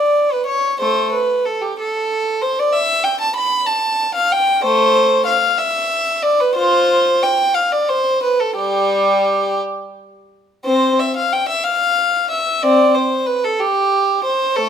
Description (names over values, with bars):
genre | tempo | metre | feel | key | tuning
classical, baroque-style suite movement for unaccompanied violin | 62 BPM (dotted quarters) | 6/8 | rubato | C major | A4 = 441 Hz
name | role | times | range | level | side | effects
warm violin | solo | 0.0-14.7 s | G3 to B5 | -14 LUFS | equal | none
room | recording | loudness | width
moderate stone room reverb, RT60 1.3 s | minimal, uncompressed stereo recording | -14 LUFS | side -8 dB against mid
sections
0.0-10.7 A section; 10.7-14.7 A section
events
none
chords
none